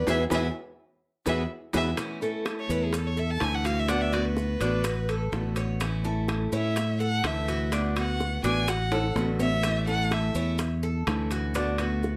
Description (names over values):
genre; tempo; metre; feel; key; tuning
latin, Cuban son and guajira; 125 BPM; 4/4; straight; A major; A4 = 438 Hz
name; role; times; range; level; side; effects
warm violin; melody; 0.0-10.6 s; G#4 to A5; -34 LUFS; equal; none
fingerpicked steel-string acoustic guitar; accompaniment; 0.0-12.2 s; D3 to F#4; -36 LUFS; equal; none
Cuban tres; arpeggios; 0.0-12.2 s; D4 to C#5; -36 LUFS; equal; none
modern bright fingered electric bass; bass; 0.0-12.2 s; A1 to A2; -30 LUFS; equal; none
bongos; percussion; 0.1-12.2 s; none; -39 LUFS; equal; none
maracas; percussion; 0.1-12.2 s; none; -47 LUFS; equal; none
timbales; percussion; 0.1-12.0 s; none; -38 LUFS; equal; none
room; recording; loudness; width
moderate large studio reverb, RT60 0.8 s; none; -27 LUFS; mono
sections
0.0-2.0 A section; 2.0-12.2 B section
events
band accent 0.1-2.0; drum fill 1.3-2.0, 8.9-9.6; violin solo 2.0-12.2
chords
0.1 Eadd9; 2.0 A; 3.9 D6; 5.8 A; 7.7 D6; 9.6 A; 11.6 D6